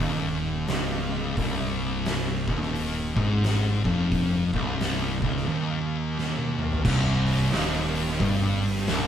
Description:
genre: stoner and doom metal.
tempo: 88 BPM.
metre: 4/4.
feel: swing 61% on 8ths.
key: C phrygian.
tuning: A4 = 439 Hz.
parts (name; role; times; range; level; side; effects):
thick fuzz guitar; riff; 0.0-9.1 s; C2 to Ab2; -26 LUFS; left 2 dB; distortion.
thick fuzz guitar; riff; 0.0-9.1 s; C2 to Ab2; -31 LUFS; right 6 dB; distortion.
growling picked electric bass; bass; 0.0-9.1 s; C1 to Ab1; -33 LUFS; equal; overdrive.
oversized low-tuned drum kit; drums; 0.0-9.1 s; crash cymbal, hi-hat, kick drum, snare drum, toms; -29 LUFS; equal; none.
overdriven electric guitar; riff; 6.8-9.1 s; C2 to G2; -32 LUFS; right 2 dB; none.
room: light reverb.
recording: band playing live in one room.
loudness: -23 LUFS.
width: side -9 dB against mid.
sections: 0.0-6.9 A section; 6.9-9.1 B section.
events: break 5.5-6.9; drum fill 6.2-6.9.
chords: 0.0 Cm.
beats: 0.00 0.69 | 1.37 2.06 2.75 3.43 | 4.12 4.80 5.49 6.17 | 6.85 7.53 8.21 8.89.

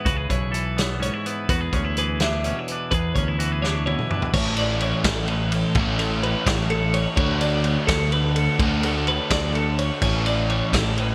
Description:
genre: math rock and midwest emo.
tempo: 84 BPM (dotted quarters).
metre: 6/8.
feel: straight.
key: A major.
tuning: A4 = 443 Hz.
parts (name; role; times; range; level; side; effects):
twangy electric guitar; accompaniment; 0.0-5.8 s; E2 to A4; -31 LUFS; equal; none.
twelve-string electric guitar; arpeggios; 0.0-11.1 s; G#4 to E5; -30 LUFS; equal; none.
picked electric bass; bass; 0.1-11.1 s; A1 to E2; -27 LUFS; equal; none.
loose indie drum kit; drums; 0.1-11.1 s; crash cymbal, hi-hat, kick drum, ride cymbal, snare drum, toms; -27 LUFS; equal; gated reverb.
overdriven semi-hollow guitar; riff; 4.3-11.1 s; A2 to F#4; -28 LUFS; equal; spring reverb.
room: moderate plate reverb, RT60 2.3 s.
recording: bright 1980s-style digital production.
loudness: -22 LUFS.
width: mono.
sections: 0.0-4.3 A section; 4.3-11.1 B section.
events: drum fill 3.6-4.3.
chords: 0.0 C#m7; 1.5 E7; 4.3 Aadd9; 7.2 Dmaj7; 10.0 Aadd9.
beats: | 0.06 0.78 | 1.49 2.20 | 2.91 3.62 | 4.33 5.05 | 5.76 6.47 | 7.18 7.89 | 8.60 9.31 | 10.02 10.73.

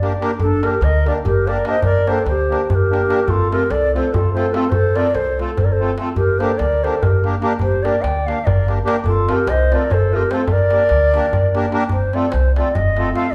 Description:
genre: balkan folk, Balkan wedding band.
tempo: 292 BPM (eighths).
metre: 7/8.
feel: straight.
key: G minor.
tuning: A4 = 439 Hz.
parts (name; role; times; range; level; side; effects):
reedy ney; melody; 0.0-13.3 s; A4 to G5; -22 LUFS; equal; none.
accordion; accompaniment; 0.0-13.3 s; A3 to Bb4; -25 LUFS; equal; light tremolo tuning.
upright bass; bass; 0.0-13.1 s; F1 to D2; -25 LUFS; equal; none.
darbuka; percussion; 0.0-13.3 s; none; -22 LUFS; equal; none.
dark clarinet; second line; 0.4-11.7 s; D4 to D5; -25 LUFS; equal; none.
room: wet large studio reverb, RT60 0.9 s.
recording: band playing live in one room.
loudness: -17 LUFS.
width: mono.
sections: 0.4-11.9 A section; 11.9-13.3 B section.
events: none.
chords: 0.4 Gm; 3.3 F; 6.2 Gm; 9.0 F; 10.5 Gm; 11.9 F.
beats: 0.18 | 0.38 0.59 0.80 1.01 1.21 1.42 1.63 | 1.83 2.04 2.25 2.45 2.66 2.87 3.07 | 3.28 3.48 3.69 3.90 4.10 4.31 4.52 | 4.72 4.93 5.13 5.34 5.55 5.75 5.96 | 6.17 6.37 6.58 6.78 6.99 7.19 7.40 | 7.61 7.81 8.02 8.22 8.43 8.63 8.84 | 9.04 9.25 9.46 9.66 9.87 10.07 10.28 | 10.48 10.69 10.89 11.10 11.30 11.50 11.71 | 11.91 12.12 12.32 12.53 12.73 12.94 13.14 | 13.34.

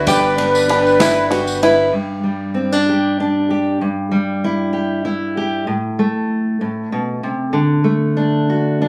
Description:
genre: acoustic folk duo or small band.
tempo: 64 BPM (dotted quarters).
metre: 6/8.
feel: straight.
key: G major.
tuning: A4 = 441 Hz.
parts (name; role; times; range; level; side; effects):
picked steel-string acoustic guitar; melody; 0.0-1.3 s; D5; -28 LUFS; equal; none.
accordion; second line; 0.0-1.3 s; B4; -20 LUFS; equal; light tremolo tuning.
fingerpicked steel-string acoustic guitar; accompaniment; 0.0-8.9 s; G2 to B4; -19 LUFS; equal; none.
warm brass ensemble; sustained chords; 0.0-1.9 s; D3 to B4; -25 LUFS; equal; none.
bluegrass banjo; arpeggios; 0.0-1.9 s; D4 to G4; -20 LUFS; equal; slapback echo.
upright bass; bass; 0.0-1.9 s; G1; -29 LUFS; equal; none.
natural country drum kit; drums; 0.1-1.8 s; kick drum, ride cymbal, snare drum; -27 LUFS; equal; none.
tambourine; percussion; 0.1-1.6 s; none; -31 LUFS; equal; none.
room: moderate studio reverb, RT60 0.8 s.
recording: recorded on a phone in the room, studio reverb, compression.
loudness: -17 LUFS.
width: mono.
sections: 0.0-1.9 A section; 1.9-8.9 B section.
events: none.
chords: 0.1 G; 1.9 G5; 3.8 Em/G; 5.7 Am; 7.6 D.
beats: | 0.08 1.01 | 1.94 2.88 | 3.81 4.75 | 5.68 6.62 | 7.55 8.49.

